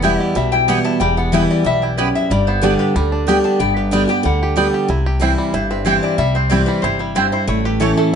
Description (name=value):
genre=bluegrass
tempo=185 BPM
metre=4/4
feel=straight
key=unclear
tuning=A4 = 440 Hz
part: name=bluegrass banjo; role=melody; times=0.0-8.2 s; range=G3 to G4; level=-24 LUFS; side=right 2 dB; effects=none
part: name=lap resonator guitar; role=melody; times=0.0-8.2 s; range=E4 to A5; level=-21 LUFS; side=left 4 dB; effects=none
part: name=picked steel-string acoustic guitar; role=accompaniment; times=0.0-8.1 s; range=E2 to G4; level=-18 LUFS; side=equal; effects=none
part: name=mandolin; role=stabs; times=0.0-7.9 s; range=A3 to A5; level=-21 LUFS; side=right 6 dB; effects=none
part: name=upright bass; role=bass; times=0.0-7.9 s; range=E1 to D2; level=-21 LUFS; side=equal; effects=none
room=moderate studio reverb, RT60 0.9 s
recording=nothing above 10.9 kHz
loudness=-14 LUFS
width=side -7 dB against mid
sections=0.0-4.9 A section; 4.9-8.2 A section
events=none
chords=0.0 Em; 2.3 G; 4.9 C; 7.5 A